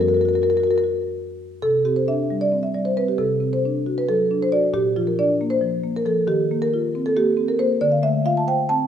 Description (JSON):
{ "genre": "classical, contemporary piece for solo marimba", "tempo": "270 BPM (eighths)", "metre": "7/8", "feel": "rubato", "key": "unclear", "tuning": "A4 = 438 Hz", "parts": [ { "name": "marimba with soft mallets", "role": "solo", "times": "0.0-8.9 s", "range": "F#2 to A5", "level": "-18 LUFS", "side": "equal", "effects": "none" } ], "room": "wet recital hall reverb, RT60 1.5 s", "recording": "minimal, uncompressed stereo recording", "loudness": "-18 LUFS", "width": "side -9 dB against mid", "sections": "0.0-1.6 A section; 1.6-8.9 B section", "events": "none", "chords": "0.0 F#maj7; 1.6 Csus2; 3.2 D7/C; 4.7 Bbadd9; 6.3 Ebsus2; 7.8 Dm7" }